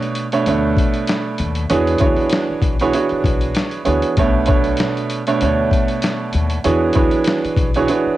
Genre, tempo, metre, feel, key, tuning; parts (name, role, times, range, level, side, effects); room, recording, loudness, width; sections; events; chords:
hip hop, boom-bap hip-hop; 97 BPM; 4/4; swing 56% on 16ths; B dorian; A4 = 440 Hz
warm upright piano; accompaniment; 0.0-8.2 s; B2 to C#5; -17 LUFS; right 3 dB; cassette tape, high-pass filter, low-pass filter
boom bap sampler-style drum kit; drums; 0.0-8.0 s; hi-hat, kick drum, snare drum; -20 LUFS; left 2 dB; cassette tape
upright bass; bass; 0.5-8.1 s; B1 to E2; -22 LUFS; left 2 dB
light reverb, small room ambience; home recording on cassette; -15 LUFS; side -14 dB against mid
0.0-8.2 A section
0.0 Bm9; 1.7 E13; 4.2 Bm9; 6.6 E13